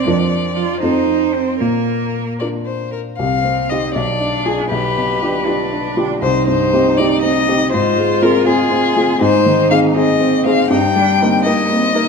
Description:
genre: quick classical-period movement for piano trio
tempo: 80 BPM (dotted quarters)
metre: 6/8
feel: rubato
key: Bb major, C minor from 3.2 s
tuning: A4 = 440 Hz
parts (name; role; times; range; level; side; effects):
- rich violin; melody; 0.0-12.1 s; Ab4 to G5; -18 LUFS; left 6 dB; none
- rich cello; second line; 0.0-12.0 s; F3 to G4; -20 LUFS; right 9 dB; none
- warm baby grand piano; accompaniment; 0.0-12.1 s; B1 to Bb4; -16 LUFS; left 1 dB; none
room: wet recital hall reverb, RT60 1.5 s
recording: dark, warm production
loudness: -13 LUFS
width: side -5 dB against mid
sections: 0.0-3.2 A section; 3.2-12.1 B section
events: none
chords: 0.1 Bb/F; 0.8 F7; 1.6 Bb; 3.2 Cm; 4.0 Bdim7; 4.7 G7/B; 6.2 Cm; 7.7 Fm/Ab; 9.2 Ab; 10.7 Eb/G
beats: | 0.06 0.82 | 1.61 2.41 | 3.19 3.95 | 4.71 5.47 | 6.22 6.97 | 7.72 8.47 | 9.21 9.96 | 10.70 11.45

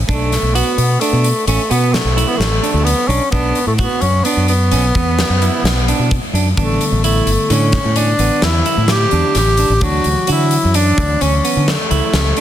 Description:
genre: progressive instrumental, band music in an uneven meter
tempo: 130 BPM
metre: 7/4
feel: straight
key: B minor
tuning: A4 = 440 Hz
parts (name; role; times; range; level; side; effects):
- fingered electric bass; bass; 0.0-12.3 s; G1 to D3; -16 LUFS; equal; none
- warm tenor saxophone; melody; 0.1-12.4 s; A3 to G4; -18 LUFS; equal; ping-pong delay
- electric guitar at the edge of break-up; arpeggios; 0.1-12.4 s; D3 to F#4; -22 LUFS; right 7 dB; ping-pong delay
- big rock drum kit; drums; 0.1-12.4 s; hi-hat, kick drum, snare drum; -19 LUFS; left 1 dB; soft clipping on kick
- bell-like tine electric piano; accompaniment; 6.6-12.4 s; D3 to C#5; -25 LUFS; left 4 dB; lush chorus
room: light reverb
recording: dense, heavily limited modern master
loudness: -12 LUFS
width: side -11 dB against mid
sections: 0.0-6.6 A section; 6.6-12.4 B section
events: none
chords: 0.1 Bm7; 6.6 A7sus4; 9.8 Dmaj7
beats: | 0.08 0.55 1.01 1.48 1.94 2.40 2.87 | 3.33 3.80 4.26 4.72 5.18 5.65 6.11 | 6.58 7.04 7.50 7.96 8.43 8.89 9.35 | 9.81 10.28 10.74 11.20 11.67 12.13

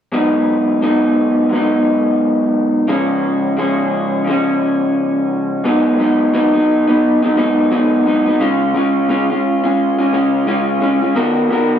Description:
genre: indie pop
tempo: 87 BPM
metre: 4/4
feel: swing 60% on 16ths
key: unclear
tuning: A4 = 436 Hz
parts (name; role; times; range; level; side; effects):
- electric guitar through a small old amp; solo; 0.1-11.8 s; G#2 to A#4; -13 LUFS; equal; vibrato effect
room: wet large studio reverb, RT60 0.9 s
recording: band playing live in one room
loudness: -13 LUFS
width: side -9 dB against mid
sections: 0.1-5.6 A section; 5.6-11.8 B section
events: none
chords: 0.1 G#m7; 2.9 C#; 5.6 G#m7; 8.4 C#; 11.2 Bmaj7/D#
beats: | 0.13 0.82 1.51 2.20 | 2.89 3.58 4.27 4.96 | 5.65 6.34 7.03 7.72 | 8.41 9.10 9.79 10.48 | 11.17

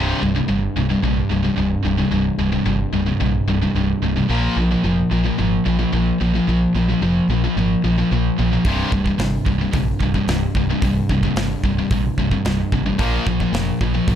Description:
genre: heavy metal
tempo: 110 BPM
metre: 4/4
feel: straight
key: unclear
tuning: A4 = 440 Hz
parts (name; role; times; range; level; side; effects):
- high-gain distorted guitar; riff; 0.0-14.2 s; C2 to Bb3; -21 LUFS; left 7 dB; distortion
- scooped high-gain guitar; riff; 0.0-14.2 s; C2 to Bb3; -23 LUFS; right 10 dB; distortion
- modern bright picked electric bass; bass; 0.0-14.2 s; C1 to Bb1; -22 LUFS; right 1 dB; none
- modern studio drum kit; drums; 8.6-14.2 s; hi-hat, kick drum, snare drum; -23 LUFS; right 1 dB; none
room: small room ambience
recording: dark, warm production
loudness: -17 LUFS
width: side -10 dB against mid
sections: 0.0-14.2 A section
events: none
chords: 0.0 C5; 4.3 Bb5; 8.7 C5; 13.0 Bb5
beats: 0.49 1.04 1.58 | 2.12 2.67 3.21 3.76 | 4.30 4.84 5.39 5.93 | 6.48 7.02 7.56 8.11 | 8.65 9.20 9.74 10.28 | 10.82 11.37 11.91 12.45 | 13.00 13.54 14.08

